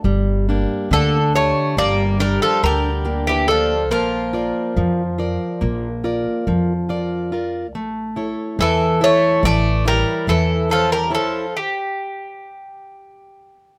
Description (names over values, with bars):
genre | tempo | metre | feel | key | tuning
greek folk, Greek bouzouki band | 141 BPM (eighths) | 9/8 | straight | G dorian sharp4 | A4 = 440 Hz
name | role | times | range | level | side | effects
picked plugged-in steel-string acoustic guitar | accompaniment | 0.0-11.5 s | D3 to E5 | -24 LUFS | equal | none
upright bass | bass | 0.0-11.2 s | G1 to F2 | -25 LUFS | equal | none
Greek bouzouki | melody | 0.9-13.8 s | G4 to D5 | -22 LUFS | equal | none
Greek bouzouki | second line | 0.9-11.5 s | D3 to Bb3 | -28 LUFS | equal | none
room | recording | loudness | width
light reverb | close, detailed microphones | -19 LUFS | mono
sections
0.0-13.8 A section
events
speeding up 0.0-13.8; stop 11.5-13.8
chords
0.0 Gm; 3.9 Bb; 7.7 A; 11.5 N.C.